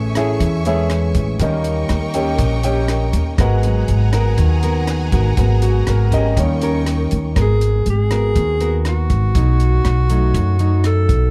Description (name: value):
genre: bossa nova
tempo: 121 BPM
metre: 4/4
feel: straight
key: G# minor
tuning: A4 = 441 Hz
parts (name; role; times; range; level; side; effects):
- nylon-string guitar; accompaniment; 0.0-11.3 s; F#2 to A#4; -24 LUFS; equal; none
- warm concert grand piano; accompaniment; 0.0-7.4 s; F#3 to G5; -26 LUFS; equal; none
- warm symphonic string section; sustained chords; 0.0-7.4 s; G#4 to C#6; -31 LUFS; equal; none
- upright bass; bass; 0.0-11.3 s; G#1 to F#2; -19 LUFS; equal; none
- compact cocktail drum kit; drums; 0.2-11.2 s; hi-hat, kick drum, rim click; -25 LUFS; equal; none
- breathy alto saxophone; melody; 7.4-11.3 s; F#4 to A4; -24 LUFS; equal; none
room: light reverb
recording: none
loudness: -17 LUFS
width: mono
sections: 0.0-7.4 A section; 7.4-11.3 B section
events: grand piano solo 0.0-7.4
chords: 0.0 Amaj7; 1.4 D#7; 3.4 G#m9; 6.4 D#7; 7.4 G#m9; 9.4 B7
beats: 0.41 0.91 | 1.40 1.90 2.40 2.89 | 3.39 3.89 4.38 4.88 | 5.38 5.88 6.37 6.87 | 7.37 7.86 8.36 8.86 | 9.35 9.85 10.35 10.84